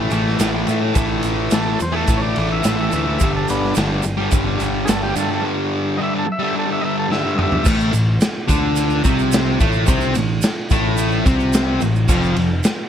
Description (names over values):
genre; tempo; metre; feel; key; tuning
garage rock duo or trio; 108 BPM; 4/4; straight; A minor; A4 = 440 Hz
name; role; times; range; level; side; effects
fuzz guitar; riff; 0.0-12.6 s; F2 to D4; -19 LUFS; left 1 dB; distortion
growling picked electric bass; bass; 0.0-12.6 s; F1 to A2; -22 LUFS; equal; overdrive
raw garage drum kit; drums; 0.1-12.8 s; crash cymbal, kick drum, ride cymbal, snare drum, toms; -21 LUFS; equal; none
tube shaker; percussion; 0.1-12.8 s; none; -31 LUFS; right 20 dB; none
overdriven combo organ; melody; 1.5-7.7 s; B3 to E5; -24 LUFS; right 1 dB; none
room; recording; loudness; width
little or no reverb; none; -16 LUFS; side -9 dB against mid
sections
0.0-7.7 A section; 7.7-12.9 B section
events
drum fill 7.1-7.7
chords
0.0 A5; 3.2 G5; 7.7 Am; 12.1 N.C.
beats
0.39 | 0.95 1.51 2.08 2.64 | 3.20 3.76 4.31 4.87 | 5.43 5.99 6.54 7.10 | 7.65 8.21 8.76 9.32 | 9.87 10.42 10.97 11.53 | 12.08 12.63